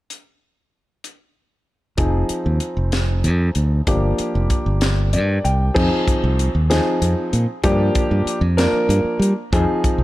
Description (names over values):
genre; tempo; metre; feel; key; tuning
electric jazz fusion; 64 BPM (dotted quarters); 6/8; straight; F dorian; A4 = 441 Hz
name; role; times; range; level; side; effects
tight funk drum kit; drums; 0.1-10.0 s; crash cymbal, hi-hat, kick drum, snare drum; -23 LUFS; equal; none
warm grand piano; accompaniment; 2.0-10.0 s; F3 to G5; -21 LUFS; left 1 dB; none
modern bright fingered electric bass; bass; 2.0-10.0 s; F1 to G3; -18 LUFS; equal; none
room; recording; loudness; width
light reverb, studio reverb; dark, warm production; -16 LUFS; side -16 dB against mid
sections
0.1-2.0 A section; 2.0-5.8 B section; 5.8-10.0 C section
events
grand piano fill 4.8-5.8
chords
0.1 N.C.; 2.0 Fm7; 3.9 Gm7; 5.8 Fm7; 7.6 Gm7; 9.5 Fm7